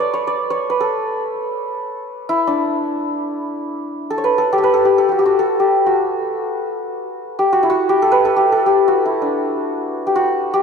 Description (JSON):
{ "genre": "Persian modal ensemble", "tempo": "free time", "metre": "none", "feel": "none", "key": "unclear", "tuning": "A4 = 439 Hz", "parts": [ { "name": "santur", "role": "solo", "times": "0.0-10.6 s", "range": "D4 to D5", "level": "-15 LUFS", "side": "equal", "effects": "tape echo" } ], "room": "wet church reverb, RT60 3.5 s", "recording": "dreamy mix soaked in reverb", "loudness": "-15 LUFS", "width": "side -6 dB against mid", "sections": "0.0-3.7 A section; 3.7-10.6 A section", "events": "none", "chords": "none", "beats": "free time" }